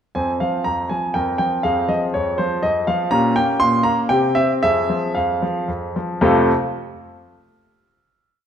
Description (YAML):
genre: classical-period piano sonatina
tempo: 111-125 BPM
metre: 3/4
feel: rubato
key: F minor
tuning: A4 = 442 Hz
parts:
  - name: bright grand piano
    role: solo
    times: 0.1-6.5 s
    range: F2 to C6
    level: -17 LUFS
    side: equal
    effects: none
room: wet recital hall reverb, RT60 1.4 s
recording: dark, warm production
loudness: -17 LUFS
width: side -8 dB against mid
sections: 0.2-6.2 A section; 6.2-7.7 final chord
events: none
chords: 0.2 F5; 1.2 C5/F; 1.6 Fm; 3.1 Gdim/Bb; 4.1 C; 4.6 Fm; 6.2 F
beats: | 0.16 0.66 1.15 | 1.64 2.14 2.63 | 3.11 3.60 4.10 | 4.62 5.16 5.69 | 6.22